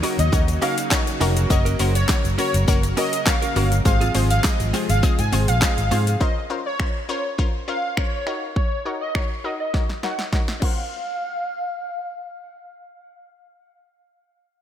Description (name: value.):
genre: dance-pop.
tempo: 102 BPM.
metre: 4/4.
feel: straight.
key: Bb minor.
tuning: A4 = 444 Hz.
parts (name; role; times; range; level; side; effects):
analog pluck; accompaniment; 0.0-13.8 s; Ab3 to Eb5; -27 LUFS; left 3 dB; chorus, sidechain pumping, low-pass filter.
soft supersaw; sustained chords; 0.0-6.2 s; C3 to Bb4; -29 LUFS; left 1 dB; analog chorus, sidechain pumping.
direct-recorded clean electric guitar; riff; 0.0-6.2 s; C4 to Bb4; -30 LUFS; right 6 dB; lush chorus.
house drum kit; drums; 0.0-10.8 s; crash cymbal, finger snaps, handclaps, hi-hat, kick drum, shaker, snare drum; -22 LUFS; equal; none.
tube shaker; percussion; 0.0-6.2 s; none; -38 LUFS; left 11 dB; none.
airy dreamy lead; melody; 0.2-12.6 s; Db5 to Ab5; -27 LUFS; equal; chorus, sidechain pumping, low-pass filter, ping-pong delay.
vintage muted fingered electric bass; bass; 0.2-6.1 s; F1 to Ab2; -20 LUFS; equal; sidechain pumping.
room: light reverb.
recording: bright 1980s-style digital production.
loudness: -19 LUFS.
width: side -10 dB against mid.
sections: 0.0-6.2 A section; 6.2-10.9 B section; 10.9-13.3 C section.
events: drop 0.0-6.2; drum fill 9.7-10.9.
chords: 0.0 Ebm7; 1.5 Gb; 3.9 Fm/Ab; 6.2 Bbmadd9; 8.3 Ebm7; 10.6 Bbmadd9.